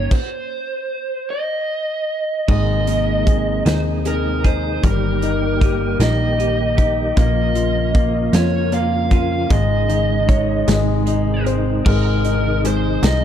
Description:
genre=six-eight pop ballad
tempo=51 BPM (dotted quarters)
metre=6/8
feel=straight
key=unclear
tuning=A4 = 439 Hz
part: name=lead guitar through a small cranked amp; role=melody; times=0.0-13.2 s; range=Bb4 to F5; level=-22 LUFS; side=right 1 dB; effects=overdrive
part: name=clear upright piano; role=accompaniment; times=0.0-13.2 s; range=G3 to Db5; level=-23 LUFS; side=left 8 dB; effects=none
part: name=clean electric guitar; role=arpeggios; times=0.0-12.4 s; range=Eb3 to Ab4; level=-27 LUFS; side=right 13 dB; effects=none
part: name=plucky analog bass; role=bass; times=0.0-13.2 s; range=G1 to F2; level=-20 LUFS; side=equal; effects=none
part: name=modern studio drum kit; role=drums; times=0.1-13.2 s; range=crash cymbal, hi-hat, kick drum, snare drum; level=-18 LUFS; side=equal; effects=none
part: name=tonewheel organ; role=sustained chords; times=2.5-13.2 s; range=C3 to G4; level=-26 LUFS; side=right 2 dB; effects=chorus vibrato, fast rotary speaker
room=light reverb, small room reverb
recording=dark, warm production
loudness=-16 LUFS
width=side -9 dB against mid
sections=0.0-2.5 A section; 2.5-11.9 B section; 11.9-13.2 C section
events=stop 0.1-2.5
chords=0.1 N.C.; 2.5 Abadd9; 4.8 Eb/G; 7.2 Bbm; 9.5 Absus4; 10.7 Ab

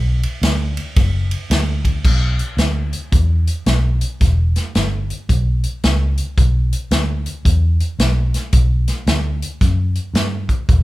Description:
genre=electric blues shuffle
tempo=111 BPM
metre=4/4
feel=swing 63% on 8ths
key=B minor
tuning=A4 = 439 Hz
part: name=vintage muted fingered electric bass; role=bass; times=0.0-10.8 s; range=E1 to G2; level=-17 LUFS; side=equal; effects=none
part: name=natural country drum kit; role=drums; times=0.2-10.8 s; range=crash cymbal, hi-hat, kick drum, ride cymbal, snare drum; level=-18 LUFS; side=equal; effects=none
room=light reverb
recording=band playing live in one room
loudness=-15 LUFS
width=side -18 dB against mid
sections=0.0-2.0 A section; 2.0-10.8 B section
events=none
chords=none

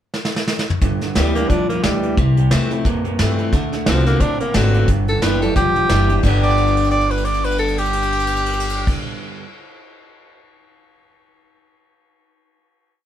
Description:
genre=rockabilly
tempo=177 BPM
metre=4/4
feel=swing 58% on 8ths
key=G major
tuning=A4 = 441 Hz
part: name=soft brush drum kit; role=drums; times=0.1-10.4 s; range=crash cymbal, hi-hat, kick drum, ride cymbal, snare drum, toms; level=-22 LUFS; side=equal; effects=none
part: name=picked steel-string acoustic guitar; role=accompaniment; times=0.8-9.4 s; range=G2 to G4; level=-25 LUFS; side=left 3 dB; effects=none
part: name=electric guitar through a small old amp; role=riff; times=0.8-9.4 s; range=G2 to G4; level=-23 LUFS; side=right 2 dB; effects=none
part: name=upright bass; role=bass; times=0.8-8.9 s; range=E1 to G2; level=-20 LUFS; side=equal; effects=none
part: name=clear tenor saxophone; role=melody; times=1.2-8.9 s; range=D3 to D5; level=-20 LUFS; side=right 1 dB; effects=none
room=moderate studio reverb, RT60 0.8 s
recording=band playing live in one room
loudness=-15 LUFS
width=side -10 dB against mid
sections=0.0-0.8 pickup bar; 0.8-6.2 A section; 6.2-8.9 final chord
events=drum fill 0.1-0.8, 6.4-8.9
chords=0.0 N.C.; 0.8 G; 2.2 C; 3.5 D7; 4.9 G

